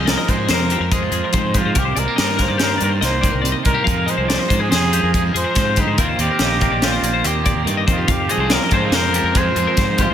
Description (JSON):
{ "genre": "math rock and midwest emo", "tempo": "142 BPM", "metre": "5/4", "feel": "straight", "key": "unclear", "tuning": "A4 = 440 Hz", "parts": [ { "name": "warm trumpet", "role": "melody", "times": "0.0-10.1 s", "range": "Eb4 to C5", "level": "-22 LUFS", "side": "equal", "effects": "slapback echo" }, { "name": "clean electric guitar", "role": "accompaniment", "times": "0.0-10.1 s", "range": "F2 to Ab4", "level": "-24 LUFS", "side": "right 6 dB", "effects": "harmonic tremolo, slapback echo" }, { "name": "twelve-string electric guitar", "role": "arpeggios", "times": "0.0-10.1 s", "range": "F4 to F5", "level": "-23 LUFS", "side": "left 6 dB", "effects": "wide subtle chorus, slapback echo, analog delay" }, { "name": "fuzz fingered electric bass", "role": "bass", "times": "0.0-10.1 s", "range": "Bb1 to Ab2", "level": "-22 LUFS", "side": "equal", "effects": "overdrive" }, { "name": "crisp fusion drum kit", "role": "drums", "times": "0.1-10.1 s", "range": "hi-hat, kick drum, snare drum", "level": "-20 LUFS", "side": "equal", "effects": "none" }, { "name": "raw garage guitar", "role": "riff", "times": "8.3-10.1 s", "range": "F3 to F4", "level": "-25 LUFS", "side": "equal", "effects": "overdrive, phaser, slapback echo" } ], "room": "moderate lush hall reverb, RT60 1.9 s, small room ambience", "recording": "big arena sound", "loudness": "-15 LUFS", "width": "side -9 dB against mid", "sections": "0.0-10.1 A section", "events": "none", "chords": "0.0 Fm; 1.8 Cm9; 3.9 Fm7; 6.0 Eb69; 8.1 Fm7", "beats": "0.07 0.50 0.92 1.34 | 1.76 2.19 2.61 3.03 3.45 | 3.88 4.30 4.72 5.14 5.56 | 5.98 6.41 6.83 7.25 7.67 | 8.09 8.52 8.94 9.36 9.78" }